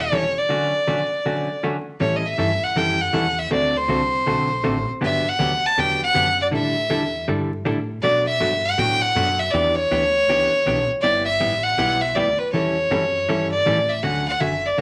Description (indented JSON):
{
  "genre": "country, western swing",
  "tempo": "160 BPM",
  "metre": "4/4",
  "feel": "swing 65% on 8ths",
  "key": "D major",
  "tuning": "A4 = 439 Hz",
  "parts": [
    { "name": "clear fiddle", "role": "melody", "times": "0.0-14.8 s", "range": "B4 to A5", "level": "-22 LUFS", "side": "equal", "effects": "none" },
    { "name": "upright bass", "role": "bass", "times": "0.0-14.8 s", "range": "E1 to B2", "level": "-32 LUFS", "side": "equal", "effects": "none" },
    { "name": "hollow-body jazz guitar", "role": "accompaniment", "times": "0.1-14.8 s", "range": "B2 to A4", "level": "-26 LUFS", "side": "equal", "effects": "none" }
  ],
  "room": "wet club reverb, RT60 0.8 s",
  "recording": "vinyl crackle",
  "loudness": "-21 LUFS",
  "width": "mono",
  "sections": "0.0-2.0 A section; 2.0-14.0 B section",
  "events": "none",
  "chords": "0.5 Dmaj7; 2.0 A7; 3.5 D7; 5.0 Gmaj7; 6.5 A7sus4; 8.0 Bm7; 9.5 Em7; 11.0 G69; 12.5 A7; 14.0 Dmaj7",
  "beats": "0.12 | 0.50 0.88 1.25 1.63 | 2.01 2.38 2.76 3.14 | 3.52 3.89 4.27 4.64 | 5.02 5.40 5.77 6.15 | 6.53 6.90 7.28 7.65 | 8.03 8.41 8.78 9.16 | 9.53 9.91 10.28 10.66 | 11.03 11.41 11.78 12.16 | 12.53 12.91 13.28 13.66 | 14.03 14.41 14.79"
}